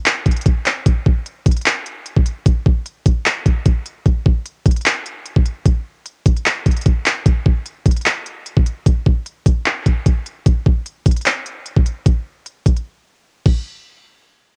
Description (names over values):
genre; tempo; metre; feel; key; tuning
hip hop; 150 BPM; 4/4; half-time; none; none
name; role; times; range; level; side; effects
trap drum kit; drums; 0.1-13.6 s; crash cymbal, handclaps, hi-hat, kick drum; -17 LUFS; equal; cassette tape
room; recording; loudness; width
little or no reverb; home recording on cassette; -18 LUFS; mono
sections
0.9-13.7 A section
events
break 12.9-13.7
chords
none